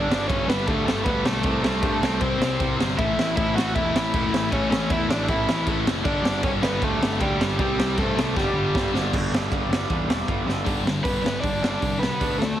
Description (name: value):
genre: punk rock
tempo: 156 BPM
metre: 4/4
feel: straight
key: unclear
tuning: A4 = 439 Hz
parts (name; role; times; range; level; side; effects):
- overdriven semi-hollow guitar; melody; 0.0-12.6 s; G3 to F#5; -26 LUFS; equal; none
- distorted electric guitar; riff; 0.0-12.6 s; G2 to D4; -31 LUFS; left 12 dB; distortion
- distorted electric guitar; riff; 0.0-12.6 s; G2 to D4; -31 LUFS; right 9 dB; distortion
- scooped high-gain guitar; riff; 0.0-12.6 s; G2 to D4; -30 LUFS; left 2 dB; distortion
- fuzz picked electric bass; bass; 0.0-12.5 s; E1 to G2; -28 LUFS; equal; overdrive
- raw garage drum kit; drums; 0.1-12.5 s; crash cymbal, hi-hat, kick drum, ride cymbal, snare drum; -25 LUFS; equal; none
room: little or no reverb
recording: heavily compressed radio sound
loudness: -20 LUFS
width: side -11 dB against mid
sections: 0.0-9.1 A section; 9.1-10.7 B section; 10.7-12.6 C section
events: drum fill 8.3-9.1, 10.5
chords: 0.0 G; 1.4 C5; 3.0 A; 6.0 G; 7.6 C5; 8.3 G5; 10.7 G